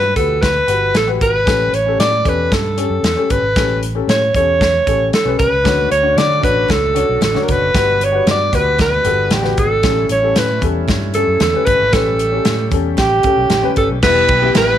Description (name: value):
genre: uptempo 1960s-style soul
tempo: 115 BPM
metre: 4/4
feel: straight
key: unclear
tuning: A4 = 442 Hz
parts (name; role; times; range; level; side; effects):
- warm alto saxophone; melody; 0.0-14.8 s; G4 to D5; -15 LUFS; right 1 dB; none
- fingered electric bass; bass; 0.0-14.8 s; E1 to D3; -21 LUFS; right 1 dB; none
- warm baby grand piano; accompaniment; 0.2-14.6 s; G3 to C#5; -22 LUFS; left 10 dB; none
- natural country drum kit; drums; 0.2-14.7 s; crash cymbal, hi-hat, kick drum, ride cymbal, snare drum; -19 LUFS; equal; none
- congas; percussion; 5.6-14.7 s; none; -28 LUFS; right 8 dB; none
- bright tonewheel organ; sustained chords; 5.7-14.8 s; E3 to G4; -28 LUFS; right 1 dB; slow rotary speaker, overdrive
- dark studio violin section; second line; 14.0-14.8 s; G4 to G5; -24 LUFS; right 15 dB; none
room: light reverb, small room ambience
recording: 1960s-style stereo with parts hard left and right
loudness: -12 LUFS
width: side -10 dB against mid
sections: 0.0-14.0 A section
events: none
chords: 0.0 Gmaj7; 1.5 A7; 5.6 Dmaj7; 7.7 Gmaj7; 9.8 A7; 14.0 Em